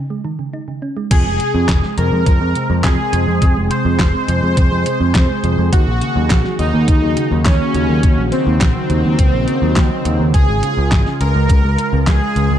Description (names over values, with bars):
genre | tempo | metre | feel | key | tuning
synthwave | 104 BPM | 4/4 | straight | unclear | A4 = 439 Hz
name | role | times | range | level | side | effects
thumb-piano-like synth pluck | arpeggios | 0.0-12.6 s | C3 to Eb4 | -24 LUFS | right 4 dB | chorus, digital delay
soft supersaw | melody | 1.1-12.6 s | C4 to C5 | -21 LUFS | equal | phaser, ping-pong delay
FM electric piano with soft pad layer | second line | 1.1-12.6 s | C5 to C6 | -28 LUFS | left 2 dB | chorus, phaser, digital delay
chorused pulse-width pad | sustained chords | 1.1-12.6 s | Db3 to Ab4 | -23 LUFS | equal | sidechain pumping
overdriven picked electric bass | bass | 1.1-12.6 s | F1 to F2 | -17 LUFS | equal | tube saturation
electronic kick drum | drums | 1.1-12.2 s | none | -14 LUFS | equal | none
pop drum kit | drums | 1.1-12.5 s | crash cymbal, handclaps, hi-hat, snare drum | -22 LUFS | equal | none
room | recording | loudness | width
light reverb, digital ambience | dark, warm production | -13 LUFS | side -10 dB against mid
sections
0.0-1.1 A section; 1.1-12.6 B section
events
break 0.0-1.1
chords
0.0 Absus4; 1.1 Fm; 5.7 Ebm7; 10.3 Db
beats
0.53 | 1.11 1.69 2.26 2.84 | 3.42 4.00 4.57 5.15 | 5.73 6.30 6.88 7.46 | 8.03 8.61 9.19 9.76 | 10.34 10.92 11.49 12.07